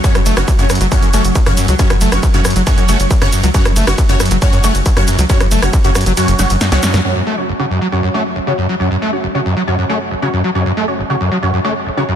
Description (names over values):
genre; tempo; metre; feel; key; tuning
driving peak-time techno; 137 BPM; 4/4; straight; F# minor; A4 = 440 Hz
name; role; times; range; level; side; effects
screaming distorted acid line; riff; 0.0-12.2 s; F#1 to A3; -17 LUFS; equal; distortion, wide subtle chorus, sidechain pumping, dub echo
rave stab; stabs; 0.0-12.0 s; C#4 to C#5; -19 LUFS; equal; chorus, built-in reverb, phaser, sidechain pumping, dub echo
swarming drone; drone; 0.0-7.1 s; F#3; -24 LUFS; right 1 dB; built-in reverb, sidechain pumping
electronic kick drum; drums; 0.0-5.8 s; none; -14 LUFS; equal; distortion, overdrive
punchy analog drum machine; drums; 0.0-7.1 s; crash cymbal, hi-hat, ride cymbal, rim click, shaker, snare drum; -20 LUFS; right 1 dB; low-pass filter on hats, low-pass filter on cymbals, low-pass filter on perc, low-pass filter on snare
tight sequencer bass; bass; 0.3-7.0 s; F#1 to F#2; -16 LUFS; equal; sidechain pumping
room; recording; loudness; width
light reverb; dense, heavily limited modern master; -11 LUFS; side -9 dB against mid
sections
0.0-7.0 A section; 7.0-12.2 B section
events
drop 0.0-7.0; kick drops out 6.2-7.0; drum fill 6.4-7.0; band accent 6.9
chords
0.0 F#5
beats
| 0.04 0.48 0.92 1.35 | 1.79 2.23 2.67 3.11 | 3.54 3.98 4.42 4.86 | 5.30 5.73 6.17 6.61 | 7.05 7.49 7.92 8.36 | 8.80 9.24 9.68 10.11 | 10.55 10.99 11.43 11.87